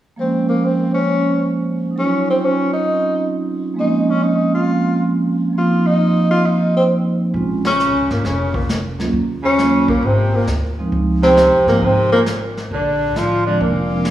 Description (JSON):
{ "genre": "jazz, small-group swing and bop", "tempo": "134 BPM", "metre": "4/4", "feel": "swing 68% on 8ths", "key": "Bb minor", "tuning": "A4 = 440 Hz", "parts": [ { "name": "warm tenor saxophone", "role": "melody", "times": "0.2-14.1 s", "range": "Bb3 to F4", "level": "-17 LUFS", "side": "equal", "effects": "none" }, { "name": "vibraphone with medium mallets", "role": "accompaniment", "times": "0.2-14.0 s", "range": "F3 to C5", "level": "-18 LUFS", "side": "right 2 dB", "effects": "none" }, { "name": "upright bass", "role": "bass", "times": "7.3-14.1 s", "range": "F1 to Ab2", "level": "-22 LUFS", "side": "equal", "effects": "none" }, { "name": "vintage brush drum kit", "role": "drums", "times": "7.3-14.1 s", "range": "brushed snare drum, hi-hat, kick drum, ride cymbal, snare drum", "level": "-26 LUFS", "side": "equal", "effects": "none" }, { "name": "growling baritone saxophone", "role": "second line", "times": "7.7-14.1 s", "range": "Bb2 to F3", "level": "-23 LUFS", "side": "right 2 dB", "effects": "none" } ], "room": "wet recital hall reverb, RT60 1.6 s", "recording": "recorded in a church or concert hall, small room ambience", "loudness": "-14 LUFS", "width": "side -12 dB against mid", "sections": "0.2-7.3 A section; 7.3-14.1 B section", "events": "band accent 7.6", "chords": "0.2 Bbm7; 2.0 Ebm7; 3.8 Bbm7; 5.5 F7sus4; 7.3 Bbm7; 9.1 Ebm7; 10.0 Ab; 10.9 Dbmaj9; 12.7 Bb7", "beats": "| 0.17 0.62 1.07 1.52 | 1.96 2.41 2.86 3.31 | 3.75 4.20 4.65 5.10 | 5.54 5.99 6.44 6.89 | 7.33 7.78 8.23 8.68 | 9.12 9.57 10.02 10.47 | 10.91 11.36 11.81 12.26 | 12.70 13.15 13.60 14.05" }